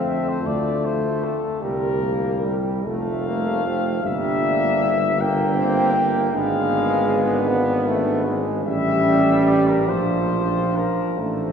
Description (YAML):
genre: classical, hymn-like piece for brass band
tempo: 45-53 BPM (dotted quarters)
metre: 6/8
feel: rubato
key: unclear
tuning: A4 = 440 Hz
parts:
  - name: mellow flugelhorn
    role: melody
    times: 0.0-11.5 s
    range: A4 to G5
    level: -24 LUFS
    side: left 4 dB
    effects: none
  - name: mellow French horn section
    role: second line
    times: 0.0-11.5 s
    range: C#4 to G4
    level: -26 LUFS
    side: right 5 dB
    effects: none
  - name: clear trombone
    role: accompaniment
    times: 0.0-11.5 s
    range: F3 to C4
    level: -25 LUFS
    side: right 2 dB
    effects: none
  - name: clear trombone section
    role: accompaniment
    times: 0.0-11.5 s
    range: F3 to B3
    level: -27 LUFS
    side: left 1 dB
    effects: none
  - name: mellow tuba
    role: bass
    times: 0.0-11.5 s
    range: F1 to F2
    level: -25 LUFS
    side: equal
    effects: none
room: wet cathedral reverb, RT60 5.0 s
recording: recorded in a church or concert hall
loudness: -18 LUFS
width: side -7 dB against mid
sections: 0.0-11.5 A section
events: none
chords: 0.0 F; 1.6 C5; 2.9 F; 4.0 Gm; 6.3 G#dim7; 8.7 A7; 9.9 Bb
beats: 0.45 | 1.61 2.86 | 4.05 5.20 | 6.34 7.50 | 8.67 9.90 | 11.19